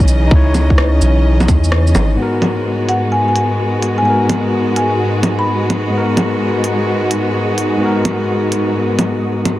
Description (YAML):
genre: future garage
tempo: 128 BPM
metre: 4/4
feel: swing 67% on 16ths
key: G# minor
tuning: A4 = 440 Hz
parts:
  - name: overdriven tine electric piano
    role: accompaniment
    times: 0.0-9.6 s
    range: G#2 to C#5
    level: -17 LUFS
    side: left 1 dB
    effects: sidechain pumping, analog delay
  - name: clear studio string section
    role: sustained chords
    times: 0.0-9.6 s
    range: G#2 to D#5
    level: -20 LUFS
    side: equal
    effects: sidechain pumping
  - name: soft dub sub bass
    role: bass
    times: 0.0-2.2 s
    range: G#1 to E2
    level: -12 LUFS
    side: equal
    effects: sidechain pumping
  - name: electronic kick drum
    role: drums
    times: 0.0-1.6 s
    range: none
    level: -12 LUFS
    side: equal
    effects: none
  - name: organic electronic drum kit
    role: drums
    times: 0.0-9.6 s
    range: bongos, hi-hat, rim click, shaker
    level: -18 LUFS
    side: equal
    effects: low-pass filter on perc, soft clipping on snare, low-pass filter on snare, low-pass filter on hats, low-pass filter on room
  - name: wind-like tuned noise texture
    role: texture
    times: 3.2-9.6 s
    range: D#4 to D#5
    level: -26 LUFS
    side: right 4 dB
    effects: built-in reverb
  - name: marimba with medium hard mallets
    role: melody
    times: 2.9-5.7 s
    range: F#5 to B5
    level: -20 LUFS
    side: left 1 dB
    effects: analog delay
room: light reverb, digital ambience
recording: dense, heavily limited modern master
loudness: -12 LUFS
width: side -15 dB against mid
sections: 0.0-2.2 A section; 2.2-9.6 B section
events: band accent 1.7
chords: 0.0 C#madd9; 2.2 G#m7